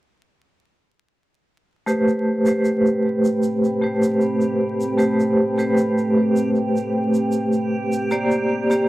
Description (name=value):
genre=trip hop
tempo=77 BPM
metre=4/4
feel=straight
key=A minor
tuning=A4 = 440 Hz
part: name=vibraphone with medium hard mallets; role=accompaniment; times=1.9-8.9 s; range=A3 to D5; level=-18 LUFS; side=equal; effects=tremolo, low-pass filter, cassette tape, tape echo
part: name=deep dark ambient pad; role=sustained chords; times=2.9-8.9 s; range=A3 to B5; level=-26 LUFS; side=right 1 dB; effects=chorus, built-in reverb, cassette tape
part: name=egg shaker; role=percussion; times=1.9-8.9 s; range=none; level=-44 LUFS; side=right 2 dB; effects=none
part: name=backwards swelling texture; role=texture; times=3.2-8.9 s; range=G4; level=-33 LUFS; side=right 3 dB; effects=built-in reverb, cassette tape
room=light reverb, small room ambience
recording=home recording on cassette, vinyl crackle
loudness=-17 LUFS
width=side -16 dB against mid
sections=1.9-8.9 A section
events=filter sweep on vibraphone 1.9-8.9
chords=1.9 Am9; 8.1 Bb69